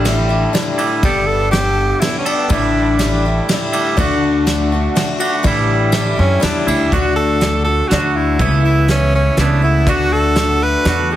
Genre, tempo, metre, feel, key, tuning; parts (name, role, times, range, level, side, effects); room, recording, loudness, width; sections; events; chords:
folk rock and heartland rock; 122 BPM; 3/4; straight; A mixolydian; A4 = 440 Hz
picked twelve-string acoustic guitar; accompaniment; 0.0-11.2 s; A2 to A4; -20 LUFS; left 4 dB
mellow accordion; sustained chords; 0.0-6.9, 9.9-11.2 s; A3 to A4; -26 LUFS; right 1 dB
twangy electric guitar; riff; 0.0-11.2 s; A2 to A4; -20 LUFS; right 3 dB
upright bass; bass; 0.0-11.2 s; G1 to F#2; -17 LUFS; equal
soft brush drum kit; drums; 0.0-11.0 s; hi-hat, kick drum, ride cymbal, snare drum; -20 LUFS; equal
bright tenor saxophone; melody; 1.0-3.2, 6.2-11.2 s; C#4 to B4; -19 LUFS; right 1 dB; digital delay
light reverb; heavily compressed radio sound, multiband compression; -13 LUFS; side -12 dB against mid
0.0-6.9 A section; 6.9-11.2 B section
0.0 A7sus4; 1.0 Gadd9; 2.5 A7sus4; 4.0 D; 5.5 A7sus4; 6.9 D; 8.4 Aadd9/C#; 9.9 D